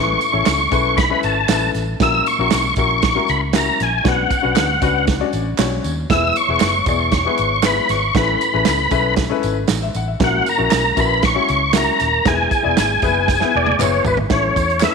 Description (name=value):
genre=uptempo 1960s-style soul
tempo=117 BPM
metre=4/4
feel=straight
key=A major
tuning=A4 = 440 Hz
part: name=tonewheel organ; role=melody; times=0.0-14.9 s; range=B4 to E6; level=-17 LUFS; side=equal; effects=chorus vibrato, fast rotary speaker
part: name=clear concert grand piano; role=accompaniment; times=0.0-14.9 s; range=A2 to F#5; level=-22 LUFS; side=left 11 dB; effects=none
part: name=vintage muted fingered electric bass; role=bass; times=0.0-14.9 s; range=D#1 to E2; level=-23 LUFS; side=equal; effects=none
part: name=natural country drum kit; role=drums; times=0.2-14.9 s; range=hi-hat, kick drum, snare drum, toms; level=-21 LUFS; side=right 5 dB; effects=none
part: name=tambourine and handclaps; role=percussion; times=0.2-14.9 s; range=none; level=-30 LUFS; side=right 11 dB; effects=none
part: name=vibraphone with soft mallets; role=second line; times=6.1-13.8 s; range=F#4 to E5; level=-29 LUFS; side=right 10 dB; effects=none
room=moderate echo chamber reverb, RT60 1.8 s, small room ambience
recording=1960s-style stereo with parts hard left and right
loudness=-14 LUFS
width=side -5 dB against mid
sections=0.0-14.3 A section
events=drum fill 13.3-14.3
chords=0.0 Aadd9; 2.0 F#7/A#; 4.1 Bmadd9; 6.1 E; 8.2 Aadd9; 10.2 F#7/A#; 12.3 E; 14.3 A